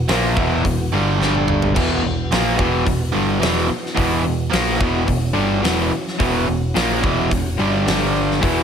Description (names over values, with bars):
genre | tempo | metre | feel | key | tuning
hard rock | 108 BPM | 4/4 | straight | unclear | A4 = 440 Hz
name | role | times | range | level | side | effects
tonewheel organ | sustained chords | 0.0-8.6 s | E3 to A4 | -31 LUFS | right 1 dB | none
crunchy overdriven guitar | riff | 0.0-8.6 s | E2 to A#3 | -21 LUFS | right 9 dB | none
overdriven semi-hollow guitar | riff | 0.0-8.6 s | E2 to A#3 | -21 LUFS | left 10 dB | none
picked electric bass | bass | 0.0-8.6 s | E1 to A#1 | -24 LUFS | equal | none
huge arena drum kit | drums | 0.1-8.6 s | crash cymbal, hi-hat, kick drum, snare drum, toms | -22 LUFS | equal | none
room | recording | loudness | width
light reverb, studio reverb | none | -16 LUFS | side -7 dB against mid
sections
0.0-8.6 A section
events
drum fill 1.2-1.8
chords
0.0 E5; 1.2 G5; 1.8 E5; 7.9 G5